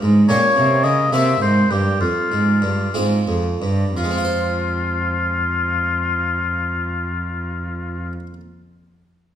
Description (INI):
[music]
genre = classical, baroque-style sonata movement with continuo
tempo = 57-75 BPM (dotted quarters)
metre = 6/8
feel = straight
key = F minor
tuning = A4 = 440 Hz
[part]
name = harpsichord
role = accompaniment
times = 0.0-8.4 s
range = F2 to C5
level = -24 LUFS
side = right 1 dB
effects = none
[part]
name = rich cello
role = bass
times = 0.0-8.1 s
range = F2 to Db3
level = -20 LUFS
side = right 1 dB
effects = none
[part]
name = mellow oboe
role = melody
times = 0.3-8.1 s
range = F4 to E5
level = -20 LUFS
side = left 3 dB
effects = none
[sound]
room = wet recital hall reverb, RT60 1.4 s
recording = none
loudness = -17 LUFS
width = side -10 dB against mid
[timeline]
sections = 0.0-4.0 A section; 4.0-8.1 B section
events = slowing down 0.0-4.0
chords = 0.3 Gdim/Bb; 1.1 C5; 2.0 Fm